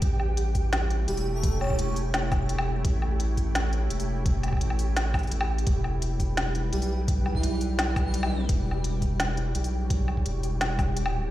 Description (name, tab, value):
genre	half-time drum and bass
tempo	170 BPM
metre	4/4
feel	half-time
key	E dorian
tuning	A4 = 440 Hz
part	deep dark ambient pad	sustained chords	0.0-11.3 s	G3 to C#5	-36 LUFS	left 2 dB	chorus, built-in reverb, sidechain pumping
part	saturated sub bass	bass	0.0-11.3 s	E1 to B1	-27 LUFS	equal	none
part	electronic kick drum	drums	0.0-10.9 s	none	-27 LUFS	equal	none
part	organic electronic drum kit	drums	0.0-11.1 s	hi-hat, snare drum, woodblock	-31 LUFS	left 1 dB	none
part	flickering grainy texture	texture	0.0-11.3 s	G4	-37 LUFS	right 2 dB	built-in reverb
part	airy dreamy lead	melody	1.1-2.0, 6.7-8.4 s	E4 to C#5	-35 LUFS	right 2 dB	chorus, digital delay
room	little or no reverb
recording	played on a big sound system in a bare room, large studio reverb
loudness	-24 LUFS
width	side -14 dB against mid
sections	0.0-11.3 A section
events	none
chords	0.0 A; 5.7 Em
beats	| 0.02 0.38 0.73 1.08 | 1.44 1.79 2.14 2.49 | 2.85 3.20 3.55 3.90 | 4.26 4.61 4.96 5.32 | 5.67 6.02 6.38 6.73 | 7.08 7.43 7.79 8.14 | 8.49 8.85 9.20 9.55 | 9.90 10.26 10.61 10.96